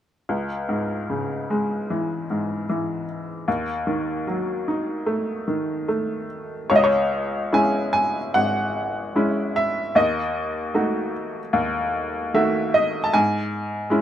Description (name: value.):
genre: classical, lyrical solo piano.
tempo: 75 BPM.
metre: 4/4.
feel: rubato.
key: C# minor.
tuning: A4 = 441 Hz.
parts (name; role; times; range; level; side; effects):
bright upright piano; solo; 0.3-14.0 s; G#1 to A5; -21 LUFS; equal; none.
room: light reverb.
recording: none.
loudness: -21 LUFS.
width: side -10 dB against mid.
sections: 0.3-6.7 A section; 6.7-14.0 B section.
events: none.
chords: 0.3 C#m; 3.5 D#dim; 6.7 C#m; 10.0 D#dim; 13.1 N.C..